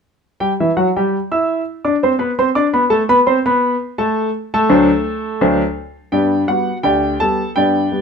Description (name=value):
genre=ragtime piano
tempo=84 BPM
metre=2/4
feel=swing 54% on 16ths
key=G major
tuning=A4 = 438 Hz
part: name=warm grand piano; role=solo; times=0.4-8.0 s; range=D2 to E6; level=-14 LUFS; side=equal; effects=none
room=wet club reverb, RT60 0.7 s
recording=none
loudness=-14 LUFS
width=side -6 dB against mid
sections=0.4-6.1 A section; 6.1-8.0 B section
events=none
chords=0.4 G; 3.3 D7; 6.1 G